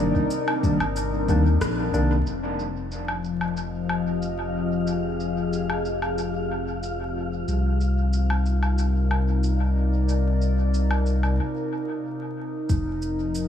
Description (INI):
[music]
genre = ambient dub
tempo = 92 BPM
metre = 4/4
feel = straight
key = F dorian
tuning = A4 = 439 Hz
[part]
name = warbly tape-like pad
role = sustained chords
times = 0.0-13.5 s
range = C3 to Eb5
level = -28 LUFS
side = left 2 dB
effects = chorus, built-in reverb, phaser
[part]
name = tine electric piano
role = stabs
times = 0.0-2.2 s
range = Eb3 to D4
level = -27 LUFS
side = left 1 dB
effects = overdrive, dub echo
[part]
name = warm sub bass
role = bass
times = 0.0-13.5 s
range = F1 to Eb2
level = -24 LUFS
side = left 1 dB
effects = none
[part]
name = electronic kick drum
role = drums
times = 0.1-1.4, 12.7-12.8 s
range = none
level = -24 LUFS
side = equal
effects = overdrive
[part]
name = electronic shaker, woodblock and rim click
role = drums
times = 0.3-13.5 s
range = none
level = -33 LUFS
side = equal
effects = overdrive, low-pass filter on perc, low-pass filter on snare, dub echo
[part]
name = wind-like tuned noise texture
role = texture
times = 3.3-13.5 s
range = F4 to F5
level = -36 LUFS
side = equal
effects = built-in reverb
[sound]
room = light reverb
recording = vinyl crackle, small room ambience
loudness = -22 LUFS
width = side -9 dB against mid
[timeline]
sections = 0.0-2.3 A section; 2.3-12.7 B section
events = band accent 1.6-1.9; break 11.4-12.7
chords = 0.0 Cm7; 2.3 Fm7; 7.5 Cm7; 12.7 F7(no3)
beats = 0.31 0.96 1.61 | 2.26 2.92 3.57 4.22 | 4.87 5.52 6.18 6.83 | 7.48 8.13 8.79 9.44 | 10.09 10.74 11.39 12.04 | 12.70 13.35